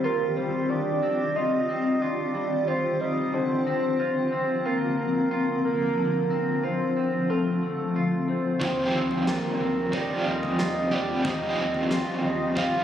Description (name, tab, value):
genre	dream pop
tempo	91 BPM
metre	4/4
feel	straight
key	unclear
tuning	A4 = 440 Hz
part	soft octave-layered synth lead	melody	0.0-12.8 s	A4 to F5	-27 LUFS	right 1 dB	chorus, phaser, digital delay
part	granular cloud pad	sustained chords	0.0-12.8 s	D3 to G4	-28 LUFS	left 2 dB	built-in reverb
part	clean electric guitar	arpeggios	0.0-12.8 s	D3 to F4	-32 LUFS	left 1 dB	wide subtle chorus, digital delay
part	overdriven semi-hollow guitar	accompaniment	8.6-12.8 s	Eb3 to G4	-27 LUFS	right 1 dB	tremolo, analog chorus
part	vintage muted fingered electric bass	bass	8.6-12.7 s	Eb2	-36 LUFS	equal	none
part	huge arena drum kit	drums	8.6-12.7 s	kick drum, snare drum, toms	-34 LUFS	equal	none
room	moderate plate reverb, RT60 2.9 s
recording	recorded on a phone in the room, studio reverb, compression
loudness	-23 LUFS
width	side -10 dB against mid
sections	0.0-12.8 A section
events	none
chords	0.0 Eb69; 3.3 Bbmaj9/D; 8.6 Eb69